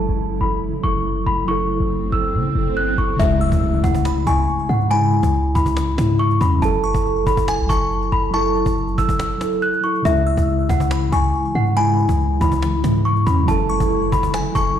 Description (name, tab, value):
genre	hip hop, trap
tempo	140 BPM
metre	4/4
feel	half-time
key	F# minor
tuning	A4 = 440 Hz
part	celesta	melody	0.0-14.8 s	E5 to F#6	-22 LUFS	left 2 dB	low-pass filter, ping-pong delay
part	muted felt-like synth keys	accompaniment	0.0-14.8 s	C#3 to A4	-22 LUFS	equal	chorus, tremolo, low-pass filter
part	granular cloud pad	sustained chords	0.0-3.2, 11.0-14.8 s	C#3 to E4	-28 LUFS	left 2 dB	built-in reverb, low-pass filter
part	clean 808-style bass	bass	0.0-14.8 s	F#1 to C#3	-20 LUFS	equal	none
part	swell and impact	sound effects	1.8-4.9 s	none	-28 LUFS	equal	none
part	cajon	drums	3.2-14.8 s	none	-28 LUFS	equal	none
part	delicate synth tine bell	second line	3.4-14.8 s	G#5 to E6	-29 LUFS	left 2 dB	chorus, phaser, ping-pong delay
room	little or no reverb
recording	played on a big sound system in a bare room, large studio reverb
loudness	-16 LUFS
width	side -9 dB against mid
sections	0.0-3.2 A section; 3.2-14.8 B section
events	filter sweep 0.0-3.2; swell 1.8-3.2; impact 3.2-4.9; kick muted 9.2-10.1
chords	0.0 F#m7; 3.2 C#m; 6.6 F#m7; 10.1 C#m; 13.5 F#m7